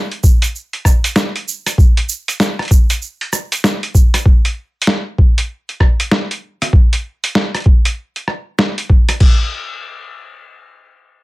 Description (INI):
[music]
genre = glitch hop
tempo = 97 BPM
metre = 4/4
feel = swing 62% on 16ths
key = none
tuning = none
[part]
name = boom bap sampler-style drum kit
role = drums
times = 0.1-9.4 s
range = crash cymbal, hi-hat, rim click, snare drum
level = -17 LUFS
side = equal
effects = none
[part]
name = electronic kick drum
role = drums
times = 0.2-9.4 s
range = none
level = -10 LUFS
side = equal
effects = none
[part]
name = tube shaker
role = percussion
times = 0.2-4.2 s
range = none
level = -24 LUFS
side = right 6 dB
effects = none
[sound]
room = little or no reverb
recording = none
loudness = -12 LUFS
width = side -20 dB against mid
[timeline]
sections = 0.0-9.2 A section; 9.2-11.2 B section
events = drop 0.0-9.2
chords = none